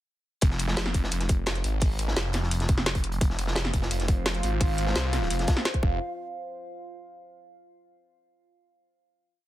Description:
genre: dark technical drum and bass.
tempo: 172 BPM.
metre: 4/4.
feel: straight.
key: F minor.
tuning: A4 = 440 Hz.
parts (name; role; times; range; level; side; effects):
phased detuned saw bass; bass; 0.4-6.0 s; F1 to C2; -28 LUFS; equal; phaser, sidechain pumping.
crunchy breakbeat drum kit; drums; 0.4-5.7 s; hi-hat, snare drum; -35 LUFS; equal; high-pass filter on hats, high-pass filter on snare, high-pass filter on room.
drum and bass drum kit; drums; 0.4-5.8 s; hi-hat, snare drum; -30 LUFS; equal; none.
electronic kick drum; drums; 0.4-5.9 s; none; -24 LUFS; equal; none.
dark analog pad; sustained chords; 3.8-6.0 s; F4 to F5; -35 LUFS; right 1 dB; chorus, phaser, sidechain pumping.
room: small room ambience.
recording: dense, heavily limited modern master.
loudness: -24 LUFS.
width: side -15 dB against mid.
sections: 0.4-6.0 drop; 6.0-7.4 final hit.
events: drop 0.4-6.0.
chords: 0.4 Fm; 5.8 F5; 6.0 N.C..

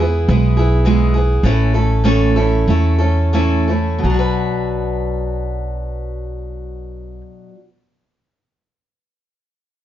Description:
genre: folk.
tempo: 84-108 BPM.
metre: 4/4.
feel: straight.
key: B dorian.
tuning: A4 = 440 Hz.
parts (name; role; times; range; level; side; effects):
picked steel-string acoustic guitar; accompaniment; 0.0-7.7 s; A2 to B4; -18 LUFS; right 1 dB; none.
upright bass; bass; 0.0-7.2 s; A1 to E2; -17 LUFS; equal; none.
room: light reverb.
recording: dark, warm production, nothing above 7.5 kHz.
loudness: -14 LUFS.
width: side -12 dB against mid.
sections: 0.0-4.0 A section; 4.0-9.7 B section.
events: slowing down 0.0-4.0.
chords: 0.0 E; 1.5 A; 4.0 Bm.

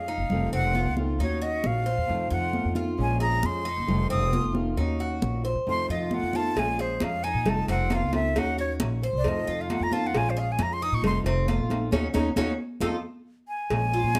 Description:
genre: latin, Cuban son and guajira.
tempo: 134 BPM.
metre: 4/4.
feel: straight.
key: unclear.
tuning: A4 = 440 Hz.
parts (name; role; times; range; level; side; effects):
breathy reedy jazz flute; melody; 0.0-14.2 s; C5 to Eb6; -31 LUFS; equal; none.
flamenco guitar; accompaniment; 0.0-14.2 s; C3 to Gb4; -35 LUFS; equal; none.
Cuban tres; arpeggios; 0.0-14.2 s; C4 to C5; -35 LUFS; equal; none.
upright bass; bass; 0.0-14.2 s; F1 to Eb3; -31 LUFS; equal; none.
congas; percussion; 0.3-14.2 s; none; -34 LUFS; equal; none.
cowbell; percussion; 6.6-14.2 s; none; -35 LUFS; equal; none.
room: light reverb.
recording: none.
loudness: -26 LUFS.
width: mono.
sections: 0.0-13.7 A section.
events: flute solo 0.0-13.7; band accent 11.9-13.7; drum fill 13.5.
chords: 0.3 F7b9b13; 1.2 Ebm7; 2.1 F7b9; 3.0 Bbm7; 3.9 F7; 4.8 Ebm7; 5.7 F7; 6.6 Bbm7; 7.5 F7b13; 8.4 Ebm7; 9.2 F7; 10.1 Bbm7; 11.0 F7; 11.9 Ebm7; 12.8 F7.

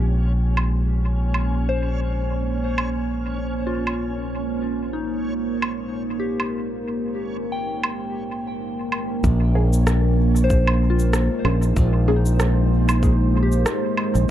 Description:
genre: ambient dub.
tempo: 95 BPM.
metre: 4/4.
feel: swing 56% on 16ths.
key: Bb dorian.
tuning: A4 = 443 Hz.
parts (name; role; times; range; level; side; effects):
deep dark ambient pad; sustained chords; 0.0-14.3 s; Ab3 to C5; -26 LUFS; right 2 dB; chorus, built-in reverb.
soft synth bell; arpeggios; 0.0-14.3 s; Eb4 to G5; -31 LUFS; left 4 dB; chorus, low-pass filter, dub echo.
modern bright fingered electric bass; bass; 0.0-14.3 s; Bb1; -20 LUFS; equal; none.
backwards swelling texture; texture; 0.0-9.3 s; Db4; -36 LUFS; left 1 dB; built-in reverb.
electronic woodblock, cabasa and rim click; drums; 0.6-14.3 s; none; -27 LUFS; right 1 dB; dub echo.
electronic kick drum; drums; 9.2-13.2 s; none; -20 LUFS; equal; none.
filtered dub chord stab; stabs; 9.6-12.2 s; Bb3 to Ab4; -29 LUFS; equal; phaser, wide subtle chorus, cassette tape, dub echo.
room: little or no reverb.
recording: dark, warm production.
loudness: -19 LUFS.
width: side -12 dB against mid.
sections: 0.0-9.2 A section; 9.2-14.3 B section.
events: filter sweep on ambient pad 0.0-9.2.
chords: 0.0 Bbm7; 9.2 Bb7(no3).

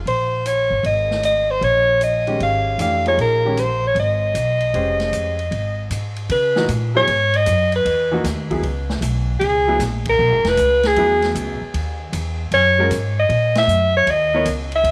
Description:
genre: modal jazz.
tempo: 154 BPM.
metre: 4/4.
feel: swing 67% on 8ths.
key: C# dorian from 6.3 s.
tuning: A4 = 436 Hz.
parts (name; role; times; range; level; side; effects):
upright bass; bass; 0.0-14.9 s; E1 to C#3; -25 LUFS; equal; none.
mellow soprano saxophone; melody; 0.1-14.9 s; G4 to F5; -20 LUFS; equal; tape echo.
swinging big-band drum kit; drums; 0.1-14.9 s; hi-hat, kick drum, ride cymbal, snare drum; -33 LUFS; equal; none.
clear baby grand piano; accompaniment; 2.3-14.5 s; Eb3 to C#5; -26 LUFS; equal; none.
room: light reverb, studio reverb.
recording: none.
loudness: -18 LUFS.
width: mono.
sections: 0.0-6.3 A section; 6.3-14.9 B section.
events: band accent 10.0, 13.5.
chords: 0.1 Dbadd9; 6.3 C#m9; 12.5 D#m.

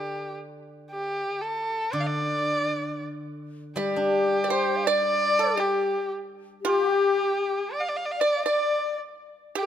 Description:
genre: chinese traditional, Chinese chamber ensemble.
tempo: 83 BPM.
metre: 2/4.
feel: rubato.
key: D yu mode.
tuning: A4 = 445 Hz.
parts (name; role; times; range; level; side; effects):
warm erhu; melody; 0.0-9.7 s; G4 to F5; -26 LUFS; right 1 dB; none.
steel-string zither; accompaniment; 0.0-5.9 s; D3 to D4; -32 LUFS; right 1 dB; none.
pipa; second line; 3.8-9.7 s; G4 to D5; -28 LUFS; right 7 dB; none.
xiao; second line; 3.8-9.7 s; G4 to F5; -26 LUFS; left 6 dB; none.
room: light reverb.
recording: close, detailed microphones.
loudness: -23 LUFS.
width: side -9 dB against mid.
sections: 0.0-3.4 A section; 3.4-9.7 B section.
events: none.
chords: none.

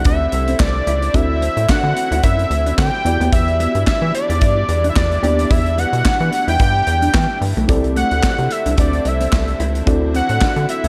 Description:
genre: early-eighties boogie funk.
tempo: 110 BPM.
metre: 4/4.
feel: swing 56% on 16ths.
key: unclear.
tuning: A4 = 441 Hz.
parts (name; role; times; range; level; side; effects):
fat analog lead; melody; 0.0-10.9 s; D5 to G5; -22 LUFS; equal; slapback echo.
mellow FM electric piano; accompaniment; 0.0-10.9 s; B3 to D5; -27 LUFS; equal; chorus, slapback echo.
lush unison pad; sustained chords; 0.0-10.9 s; D3 to E4; -33 LUFS; equal; none.
rubbery square bass; bass; 0.0-10.9 s; B1 to E3; -21 LUFS; equal; none.
modern studio drum kit; drums; 0.0-10.9 s; handclaps, hi-hat, kick drum, snare drum; -21 LUFS; equal; none.
mellow electric guitar; riff; 0.1-10.9 s; A3 to G4; -29 LUFS; equal; lush chorus, slapback echo.
room: light reverb, small room ambience.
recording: none.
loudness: -17 LUFS.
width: mono.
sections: 0.0-10.9 A section.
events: none.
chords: 0.0 C69; 1.1 D9; 3.1 Em9; 7.7 C69; 9.9 D9.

